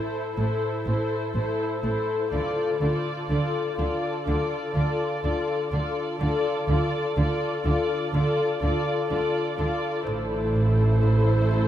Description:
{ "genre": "cinematic, suspense film score", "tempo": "62 BPM", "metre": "4/4", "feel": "straight", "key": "unclear", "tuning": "A4 = 439 Hz", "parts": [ { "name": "muted symphonic violin section", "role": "melody", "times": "0.0-11.7 s", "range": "C5 to D5", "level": "-32 LUFS", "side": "right 1 dB", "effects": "none" }, { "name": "muted symphonic violin section", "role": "second line", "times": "0.0-11.7 s", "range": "A4", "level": "-30 LUFS", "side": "left 4 dB", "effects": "none" }, { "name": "muted symphonic viola section", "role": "accompaniment", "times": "0.0-11.7 s", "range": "E4 to F4", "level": "-32 LUFS", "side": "left 1 dB", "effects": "none" }, { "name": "concert harp", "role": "riff", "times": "0.0-11.7 s", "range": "A2 to D4", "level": "-29 LUFS", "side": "equal", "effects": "none" }, { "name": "muted symphonic cello section", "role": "bass", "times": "0.4-11.7 s", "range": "A2 to D3", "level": "-28 LUFS", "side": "right 1 dB", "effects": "none" }, { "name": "muted symphonic double bass section", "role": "bass", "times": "0.4-11.7 s", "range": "A1 to D2", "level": "-27 LUFS", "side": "right 1 dB", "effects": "none" } ], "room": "moderate huge ambient reverb, RT60 7.9 s", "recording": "in a vast, echoing space", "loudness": "-22 LUFS", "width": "side -11 dB against mid", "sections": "0.0-11.7 A section", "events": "none", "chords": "0.0 Am; 2.3 Dm; 10.1 Am" }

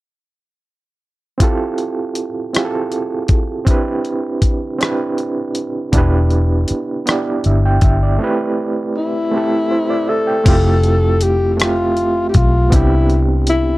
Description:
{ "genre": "slow six-eight R&B", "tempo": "53 BPM (dotted quarters)", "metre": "6/8", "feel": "straight", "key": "unclear", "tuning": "A4 = 440 Hz", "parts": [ { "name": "overdriven reed electric piano", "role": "accompaniment", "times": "1.4-13.8 s", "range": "A3 to G5", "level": "-19 LUFS", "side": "right 3 dB", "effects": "fast tremolo" }, { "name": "dusty soul sampler-style drum kit", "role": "drums", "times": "1.4-13.6 s", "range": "crash cymbal, hi-hat, kick drum, rim click", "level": "-15 LUFS", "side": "equal", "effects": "none" }, { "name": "vintage muted fingered electric bass", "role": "bass", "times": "5.9-13.8 s", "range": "E1 to C2", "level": "-15 LUFS", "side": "equal", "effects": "none" }, { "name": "breathy tenor saxophone", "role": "melody", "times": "9.0-13.8 s", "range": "E4 to A4", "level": "-17 LUFS", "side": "left 2 dB", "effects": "none" } ], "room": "little or no reverb", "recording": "dry, close 1970s-style studio recording", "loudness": "-14 LUFS", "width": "side -18 dB against mid", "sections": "1.4-10.5 A section; 10.5-13.8 B section", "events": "break 8.2-10.5", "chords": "1.4 Fmaj7; 3.7 Cmaj9; 5.9 Em7; 8.2 Am9; 10.5 Fmaj7; 12.7 Cmaj9" }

